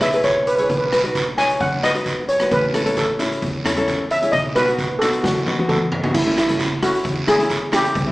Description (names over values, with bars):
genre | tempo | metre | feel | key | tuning
calypso | 132 BPM | 4/4 | straight | unclear | A4 = 440 Hz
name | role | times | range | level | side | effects
steel pan | melody | 0.0-8.1 s | E4 to G#5 | -19 LUFS | equal | none
nylon-string guitar | accompaniment | 0.0-8.1 s | G3 to C#5 | -23 LUFS | left 1 dB | none
upright bass | bass | 0.0-8.1 s | A1 to F#2 | -32 LUFS | equal | none
street-band drum kit | drums | 0.0-8.1 s | crash cymbal, hi-hat, kick drum, rim click, snare drum, toms | -24 LUFS | equal | none
guiro | percussion | 0.0-8.1 s | none | -28 LUFS | right 2 dB | none
room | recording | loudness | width
wet large studio reverb, RT60 1.0 s | band playing live in one room, small speaker sound | -16 LUFS | side -19 dB against mid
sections
0.0-6.1 A section; 6.1-8.1 B section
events
steel pan solo 0.0-6.1; drum fill 5.2-6.1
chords
0.0 E; 0.7 B; 2.5 A; 4.3 B7; 6.1 A